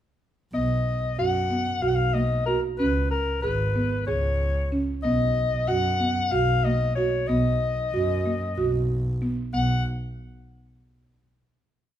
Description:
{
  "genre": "contemporary instrumental, chamber music in an uneven meter",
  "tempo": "187 BPM (eighths)",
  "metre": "7/8",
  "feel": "straight",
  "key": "B lydian",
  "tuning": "A4 = 440 Hz",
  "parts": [
    { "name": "breathy soprano saxophone", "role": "melody", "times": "0.5-9.8 s", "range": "A#4 to F#5", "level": "-27 LUFS", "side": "left 4 dB", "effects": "none" },
    { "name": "buzzing marimba with soft mallets", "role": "arpeggios", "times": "0.5-9.8 s", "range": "A#3 to G#4", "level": "-28 LUFS", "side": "right 4 dB", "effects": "none" },
    { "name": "dark double bass", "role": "bass", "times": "0.5-9.8 s", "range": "G#1 to F#2", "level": "-26 LUFS", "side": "equal", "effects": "none" }
  ],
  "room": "light reverb",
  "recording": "dark, warm production",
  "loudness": "-22 LUFS",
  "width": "side -11 dB against mid",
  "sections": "0.5-9.5 A section; 9.5-11.8 final chord",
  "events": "none",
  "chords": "0.5 B; 2.8 C#5; 5.0 B; 9.5 B5",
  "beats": "| 0.54 0.86 1.18 1.50 1.82 2.15 2.47 | 2.79 3.11 3.43 3.75 4.07 4.39 4.72 | 5.04 5.36 5.68 6.00 6.32 6.64 6.97 | 7.29 7.61 7.93 8.25 8.57 8.89 9.21 | 9.53"
}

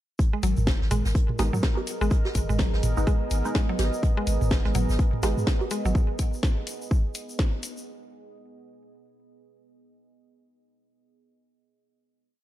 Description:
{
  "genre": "minimal techno",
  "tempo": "125 BPM",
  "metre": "4/4",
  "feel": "swing 59% on 16ths",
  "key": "G# minor",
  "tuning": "A4 = 440 Hz",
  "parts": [
    { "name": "electronic kick drum", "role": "drums", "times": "0.2-7.5 s", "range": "none", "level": "-24 LUFS", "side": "equal", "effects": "none" },
    { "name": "jazz brush drum kit", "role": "drums", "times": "0.2-5.8 s", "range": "hi-hat, snare drum", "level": "-40 LUFS", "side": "right 2 dB", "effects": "high-pass filter on hats, high-pass filter on snare, high-pass filter on room" },
    { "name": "egg shaker", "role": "percussion", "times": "0.2-7.8 s", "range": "none", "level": "-42 LUFS", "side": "left 3 dB", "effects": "none" },
    { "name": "bubbling stepped-filter texture", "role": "texture", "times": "0.2-6.0 s", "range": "A#4", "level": "-42 LUFS", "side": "left 1 dB", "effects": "chorus, built-in reverb, sidechain pumping" },
    { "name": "deep dark ambient pad", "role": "texture", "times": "1.4-7.9 s", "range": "B3 to D#5", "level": "-35 LUFS", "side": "right 3 dB", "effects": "chorus, built-in reverb, sidechain pumping" },
    { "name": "mallet-like synth pluck", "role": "riff", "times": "0.3-5.9 s", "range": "F#3 to G#3", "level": "-32 LUFS", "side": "equal", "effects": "chorus, sidechain pumping, tape echo" },
    { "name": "punchy sub bass", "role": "bass", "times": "0.4-5.9 s", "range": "G#1 to G#2", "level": "-25 LUFS", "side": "equal", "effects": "sidechain pumping" },
    { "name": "house drum kit", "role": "drums", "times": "0.4-7.7 s", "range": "hi-hat, snare drum", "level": "-33 LUFS", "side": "equal", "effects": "none" },
    { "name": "electronic toms and bongos", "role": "percussion", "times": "0.6-5.7 s", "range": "none", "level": "-31 LUFS", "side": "right 3 dB", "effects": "none" },
    { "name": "filtered dub chord stab", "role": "stabs", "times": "1.4-5.3 s", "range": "G#3 to D#4", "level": "-36 LUFS", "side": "equal", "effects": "phaser, tape echo" }
  ],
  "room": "little or no reverb",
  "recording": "dark, warm production",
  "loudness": "-22 LUFS",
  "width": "side -14 dB against mid",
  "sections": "0.2-7.9 drop",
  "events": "drop 0.2-7.9",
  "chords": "0.2 G#m",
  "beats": "| 0.19 0.67 1.15 1.63 | 2.11 2.59 3.07 3.55 | 4.03 4.51 4.99 5.47 | 5.95 6.43 6.91 7.39"
}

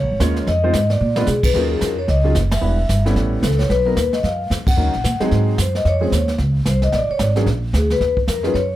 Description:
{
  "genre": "jazz, small-group swing and bop",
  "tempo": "223 BPM",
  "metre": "4/4",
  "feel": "swing 61% on 8ths",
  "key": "Eb minor",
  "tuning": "A4 = 440 Hz",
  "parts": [
    { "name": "vibraphone with medium mallets", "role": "melody", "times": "0.0-8.8 s", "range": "Ab4 to F#5", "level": "-21 LUFS", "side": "left 2 dB", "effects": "none" },
    { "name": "upright bass", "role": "bass", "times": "0.0-8.8 s", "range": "E1 to Cb3", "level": "-18 LUFS", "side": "equal", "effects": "none" },
    { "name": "warm baby grand piano", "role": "accompaniment", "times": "0.2-8.5 s", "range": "F3 to Db5", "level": "-23 LUFS", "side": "right 1 dB", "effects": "none" },
    { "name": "jazz brush drum kit", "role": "drums", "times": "0.2-8.8 s", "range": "brushed snare drum, crash cymbal, hi-hat, kick drum, ride cymbal, snare drum", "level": "-24 LUFS", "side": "right 1 dB", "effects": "none" }
  ],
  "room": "light reverb",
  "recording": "none",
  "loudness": "-15 LUFS",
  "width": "side -14 dB against mid",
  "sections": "0.0-1.5 A section; 1.5-8.8 B section",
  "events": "drum fill 1.0; band accent 2.5, 4.6",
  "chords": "0.5 Fm7; 1.0 Bb7b9; 1.5 Ebm11; 2.6 Em7; 3.2 A9; 3.7 Bmaj7; 4.8 Ebm7; 5.3 Ab7; 5.8 Dbmaj7; 6.9 Bb7; 8.0 Ebm11",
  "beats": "0.20 | 0.47 0.74 1.00 1.27 | 1.54 1.81 2.08 2.35 | 2.62 2.89 3.16 3.43 | 3.69 3.96 4.23 4.50 | 4.77 5.04 5.31 5.58 | 5.85 6.12 6.39 6.66 | 6.92 7.19 7.46 7.73 | 8.00 8.27 8.54"
}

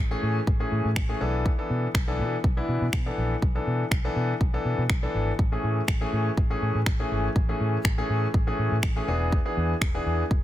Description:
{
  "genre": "dance-pop",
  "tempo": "122 BPM",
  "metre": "4/4",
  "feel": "straight",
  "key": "A major",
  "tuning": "A4 = 440 Hz",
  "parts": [
    { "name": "vintage muted fingered electric bass", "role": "bass", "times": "0.0-10.4 s", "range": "E1 to B2", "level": "-28 LUFS", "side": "equal", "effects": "sidechain pumping" },
    { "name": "clear grand piano", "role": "accompaniment", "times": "0.1-10.2 s", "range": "E3 to A4", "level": "-28 LUFS", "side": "left 1 dB", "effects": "sidechain pumping" },
    { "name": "house drum kit", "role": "drums", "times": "0.5-10.4 s", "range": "finger snaps, kick drum", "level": "-25 LUFS", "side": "equal", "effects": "soft clipping on snare" }
  ],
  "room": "little or no reverb",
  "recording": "dense, heavily limited modern master",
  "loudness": "-23 LUFS",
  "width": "side -13 dB against mid",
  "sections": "0.0-10.4 A section",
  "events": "none",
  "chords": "0.0 Amaj7; 1.2 E7sus4; 5.4 Amaj7; 9.1 E7",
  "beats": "0.47 0.96 | 1.46 1.95 2.44 2.93 | 3.42 3.92 4.41 4.90 | 5.39 5.88 6.37 6.87 | 7.36 7.85 8.34 8.83 | 9.32 9.82 10.31"
}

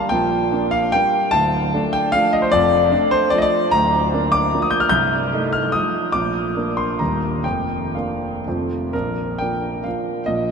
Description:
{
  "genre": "classical, romantic triple-time dance for piano with dotted rhythms",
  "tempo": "113-163 BPM",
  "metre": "3/4",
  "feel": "rubato",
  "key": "Bb major from 3.7 s",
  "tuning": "A4 = 440 Hz",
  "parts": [
    { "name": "warm concert grand piano", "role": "solo", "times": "0.0-10.5 s", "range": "C1 to G6", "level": "-17 LUFS", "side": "equal", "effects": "none" }
  ],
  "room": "wet huge ambient reverb, RT60 7.3 s",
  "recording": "in a vast, echoing space",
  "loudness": "-17 LUFS",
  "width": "side -6 dB against mid",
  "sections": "0.0-8.9 A section; 8.9-10.5 B section",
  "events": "none",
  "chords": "0.1 Gm/Bb; 1.3 Dm; 2.5 Dm/F; 3.7 Bb/D; 4.9 F7/C; 6.1 Bb; 7.0 Ebmaj7; 7.5 Bb/F; 8.5 F; 8.9 Bb",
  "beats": "| 0.10 0.51 0.93 | 1.33 1.73 2.14 | 2.53 2.91 3.31 | 3.73 4.14 4.54 | 4.92 5.32 5.74 | 6.15 6.56 7.00 | 7.45 7.96 8.47 | 8.94 9.40 9.86 | 10.27"
}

